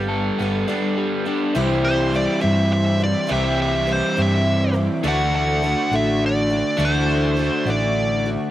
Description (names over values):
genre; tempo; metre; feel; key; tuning
rock; 69 BPM (dotted quarters); 6/8; straight; C lydian; A4 = 441 Hz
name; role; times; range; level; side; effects
pedal steel guitar; second line; 0.0-0.9 s; F5; -44 LUFS; right 3 dB; none
picked twelve-string acoustic guitar; accompaniment; 0.0-8.5 s; G2 to D5; -26 LUFS; left 2 dB; none
crunchy overdriven guitar; riff; 0.0-8.5 s; C3 to A4; -22 LUFS; equal; none
hollow-body short-scale fingered electric bass; bass; 0.0-8.4 s; G1 to G2; -22 LUFS; equal; none
accordion; sustained chords; 1.5-8.5 s; F#4 to D6; -35 LUFS; right 2 dB; none
nasal lead guitar with a parked wah; melody; 1.8-8.3 s; C5 to F#5; -23 LUFS; equal; overdrive, slapback echo
room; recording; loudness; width
little or no reverb; recorded outdoors, with no room sound; -17 LUFS; side -13 dB against mid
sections
0.0-1.6 A section; 1.6-8.5 B section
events
none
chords
0.0 Gadd9; 1.6 C; 5.0 Dadd9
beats
0.70 | 1.57 2.44 | 3.31 4.18 | 5.05 5.92 | 6.79 7.66